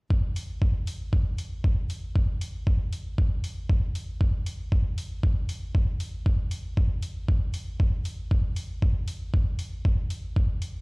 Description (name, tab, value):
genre	nu-disco, nu disco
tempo	117 BPM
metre	4/4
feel	straight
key	none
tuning	none
part	electronic kick drum	drums	0.1-10.5 s	none	-23 LUFS	equal	none
part	electronic hi-hat	drums	0.4-10.7 s	none	-44 LUFS	left 1 dB	none
room	little or no reverb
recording	played on a big sound system in a bare room, large studio reverb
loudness	-25 LUFS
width	side -31 dB against mid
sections	0.1-10.8 A section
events	none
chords	none